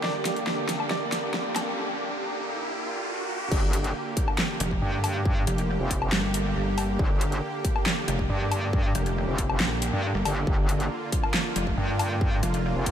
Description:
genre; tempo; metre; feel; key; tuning
heavy wobble dubstep; 138 BPM; 4/4; half-time; G minor; A4 = 439 Hz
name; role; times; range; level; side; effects
bright baby grand piano; melody; 0.0-1.2 s; D5; -35 LUFS; equal; ping-pong delay
supersaw pad; sustained chords; 0.0-12.9 s; D3 to G4; -31 LUFS; right 1 dB; sidechain pumping, low-pass filter
dubstep drum kit; drums; 0.0-12.9 s; crash cymbal, handclaps, hi-hat, snare drum, woodblock; -30 LUFS; left 1 dB; small room ambience
riser; sound effects; 0.0-3.5 s; none; -35 LUFS; equal; none
granular cloud pad; texture; 0.0-1.8 s; D4 to G5; -39 LUFS; right 2 dB; none
metallic wobble bass; bass; 3.5-12.9 s; F1 to G2; -27 LUFS; equal; chorus, overdrive
electronic kick drum; drums; 3.5-12.9 s; none; -27 LUFS; equal; distortion, small room ambience
pulsing pluck wobble bass; bass; 4.6-12.7 s; F1 to Bb1; -27 LUFS; equal; chorus, overdrive
room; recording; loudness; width
moderate huge ambient reverb, RT60 3.9 s; dreamy mix soaked in reverb, high-pass filter; -24 LUFS; side -9 dB against mid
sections
0.0-3.5 A section; 3.5-12.9 B section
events
build-up 0.0-3.5; drum fill 0.0-1.8; riser 0.0-3.5; filter sweep on supersaw synth 0.0-3.5; break 1.8-3.5; drop 3.5-12.9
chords
0.0 Gm

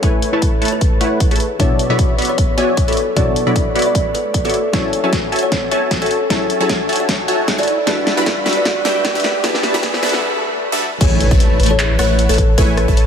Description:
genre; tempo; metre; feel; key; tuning
future bass; 153 BPM; 4/4; swing 55% on 16ths, half-time; A major; A4 = 440 Hz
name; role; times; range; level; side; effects
kalimba; melody; 0.0-12.8 s; G#4 to E5; -20 LUFS; left 2 dB; sidechain pumping, dub echo
soft round pluck; accompaniment; 0.0-9.9 s; B2 to C#5; -24 LUFS; left 3 dB; analog chorus, sidechain pumping, dub echo
supersaw stab; riff; 0.0-13.1 s; G3 to C#6; -19 LUFS; equal; sidechain pumping, low-pass filter
big-room dance drum kit; drums; 0.0-13.1 s; crash cymbal, handclaps, hi-hat, rim click, snare drum; -22 LUFS; equal; small room reverb
electronic kick drum; drums; 0.0-13.0 s; none; -17 LUFS; equal; small room reverb
riser, swell and impact; sound effects; 1.1-12.6 s; none; -26 LUFS; equal; none
soft round pluck; arpeggios; 11.0-13.0 s; G#4 to C#5; -27 LUFS; left 2 dB; chorus, sidechain pumping, dub echo
saturated sub bass; bass; 11.0-13.1 s; A1; -17 LUFS; equal; sidechain pumping
room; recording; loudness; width
light reverb, digital ambience; high-pass filter; -13 LUFS; side -7 dB against mid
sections
0.0-11.0 A section; 11.0-13.1 B section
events
build-up 0.0-11.0; filter sweep on supersaw synth 0.0-11.0; filter sweep 0.0-11.0; riser 1.1-10.2; drum fill 4.7-10.2; break 10.2-11.0; swell 10.2-11.0; drop 11.0-13.1; impact 11.0-12.6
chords
0.0 Amaj9; 1.4 Bm11; 4.7 F#m9; 7.7 Gmaj13; 11.0 Amaj9

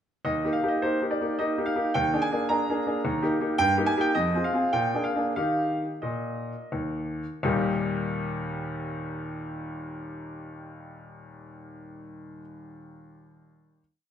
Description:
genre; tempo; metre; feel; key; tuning
classical-period piano sonatina; 83-111 BPM; 3/4; rubato; Eb major; A4 = 440 Hz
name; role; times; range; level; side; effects
bright grand piano; solo; 0.2-13.8 s; Eb2 to Bb5; -26 LUFS; equal; none
room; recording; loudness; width
wet recital hall reverb, RT60 1.4 s; minimal, uncompressed stereo recording; -25 LUFS; side -9 dB against mid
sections
0.3-7.4 A section; 7.4-11.6 final chord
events
slowing down 2.8-7.4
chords
0.3 Eb; 1.9 Bb7/Eb; 3.0 Eb; 3.6 Eb/G; 4.1 Fm; 4.7 Bb7; 5.4 Eb

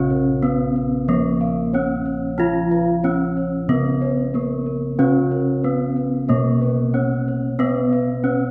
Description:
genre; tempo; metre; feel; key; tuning
Javanese gamelan; 92 BPM; 4/4; straight; unclear; A4 = 439 Hz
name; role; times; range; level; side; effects
gamelan-type bronze metallophone; melody; 0.0-8.5 s; Bb3 to F4-30c; -25 LUFS; equal; none
gamelan-type bronze metallophone; accompaniment; 0.0-8.5 s; Db3-30c to Cb4+20c; -26 LUFS; equal; none
gamelan-type bossed gongs; arpeggios; 0.0-8.5 s; Bb4 to F5-30c; -32 LUFS; equal; none
gamelan-type bronze metallophone; arpeggios; 0.0-8.5 s; Bb4 to F5-30c; -33 LUFS; equal; none
gamelan-type bossed gongs; bass; 0.0-8.5 s; Cb3+20c to Cb5+20c; -25 LUFS; equal; none
room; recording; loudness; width
wet recital hall reverb, RT60 1.4 s; recorded in a church or concert hall; -20 LUFS; mono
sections
0.0-8.5 A section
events
none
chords
none

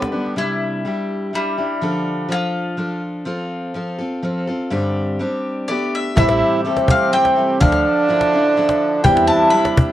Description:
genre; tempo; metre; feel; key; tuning
acoustic folk duo or small band; 124 BPM; 3/4; straight; C major; A4 = 442 Hz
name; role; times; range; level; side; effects
clear French horn; second line; 0.0-0.1, 6.2-9.9 s; C4 to E4; -17 LUFS; right 3 dB; none
picked steel-string acoustic guitar; accompaniment; 0.0-9.9 s; G2 to B4; -22 LUFS; left 1 dB; none
accordion; sustained chords; 0.0-0.4, 6.2-9.9 s; C3 to G4; -26 LUFS; equal; light tremolo tuning
cajon; percussion; 0.0-0.3, 6.2-9.9 s; none; -17 LUFS; left 1 dB; none
bowl-back mandolin; melody; 0.4-3.0, 5.7-9.9 s; G3 to B5; -20 LUFS; left 2 dB; cassette tape
upright bass; bass; 6.2-9.3 s; A1 to E2; -21 LUFS; equal; none
room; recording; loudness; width
light reverb; home recording on cassette; -16 LUFS; side -13 dB against mid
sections
0.4-6.2 A section; 6.2-9.9 B section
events
none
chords
0.4 Cadd9; 1.8 Dm; 3.3 F; 4.7 Gsus4; 5.7 Gadd9; 6.2 Am7; 7.6 Dmadd9; 9.0 C/E

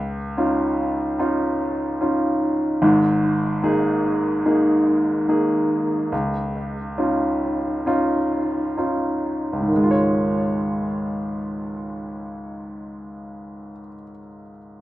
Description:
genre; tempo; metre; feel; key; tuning
pop; 64-74 BPM; 4/4; straight; Db major; A4 = 439 Hz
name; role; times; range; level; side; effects
clear baby grand piano; solo; 0.0-14.8 s; Ab1 to Db5; -20 LUFS; equal; digital delay
room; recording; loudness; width
wet studio ambience, RT60 0.5 s; rough home demo mix; -19 LUFS; side -15 dB against mid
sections
0.0-9.7 A section; 9.7-13.5 B section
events
slowing down 2.8-9.7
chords
0.0 Dbadd9; 2.8 Absus2; 6.1 Dbadd9

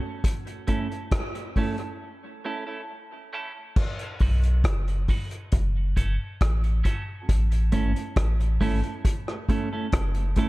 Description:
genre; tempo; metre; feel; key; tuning
dub reggae; 68 BPM; 4/4; straight; unclear; A4 = 440 Hz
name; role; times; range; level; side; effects
vintage drum kit; drums; 0.2-10.5 s; crash cymbal, hi-hat, kick drum, rim click; -26 LUFS; equal; none
clean electric guitar; accompaniment; 0.7-10.5 s; A3 to B4; -32 LUFS; right 3 dB; spring reverb, high-pass filter, low-pass filter, dub echo
warm sub bass; bass; 4.2-10.3 s; F#1 to B1; -23 LUFS; equal; none
room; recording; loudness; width
little or no reverb; dark, warm production; -23 LUFS; side -19 dB against mid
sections
0.0-3.8 A section; 3.8-10.5 B section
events
filter sweep on clean electric guitar 0.0-7.3; break 2.0-3.8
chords
0.2 A; 3.8 B; 5.5 F#m; 7.3 A

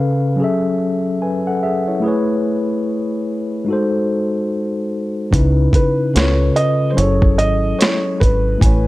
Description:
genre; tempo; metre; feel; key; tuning
lo-fi hip hop; 73 BPM; 4/4; swing 61% on 16ths; unclear; A4 = 439 Hz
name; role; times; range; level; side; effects
mellow tine electric piano; accompaniment; 0.0-8.9 s; C#3 to G#5; -17 LUFS; left 1 dB; medium stereo tremolo, low-pass filter
deep dub fingered electric bass; bass; 5.3-8.9 s; F#1 to C#2; -17 LUFS; equal; none
dusty soul sampler-style drum kit; drums; 5.3-8.9 s; hi-hat, kick drum, snare drum; -16 LUFS; equal; overdrive
felt-muted upright piano; melody; 5.7-8.9 s; B4 to D#5; -19 LUFS; right 1 dB; low-pass filter
room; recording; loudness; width
light reverb, digital ambience; none; -15 LUFS; side -18 dB against mid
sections
0.0-5.3 A section; 5.3-8.9 B section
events
none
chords
0.4 F#m7; 2.0 Amaj9; 3.7 G#7b9; 5.3 C#m9; 6.2 C#7b13; 7.0 F#m7

